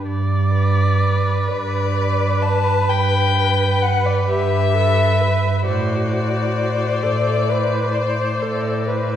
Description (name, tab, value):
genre	classical, slow romantic movement for string quartet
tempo	43 BPM (dotted quarters)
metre	12/8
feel	rubato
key	G major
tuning	A4 = 440 Hz
part	muted violin	second line	0.0-9.2 s	B4 to C5	-25 LUFS	left 1 dB	none
part	muted viola	accompaniment	0.0-9.2 s	F#4 to D5	-24 LUFS	right 1 dB	none
part	muted cello	bass	0.1-9.2 s	G2 to A2	-19 LUFS	right 2 dB	none
part	muted violin	melody	1.5-9.2 s	D5 to A5	-22 LUFS	left 5 dB	none
room	wet scoring stage reverb, RT60 1.9 s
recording	heard from further back in the room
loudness	-16 LUFS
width	side -10 dB against mid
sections	0.1-9.2 A section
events	none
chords	0.1 G; 5.7 D7/A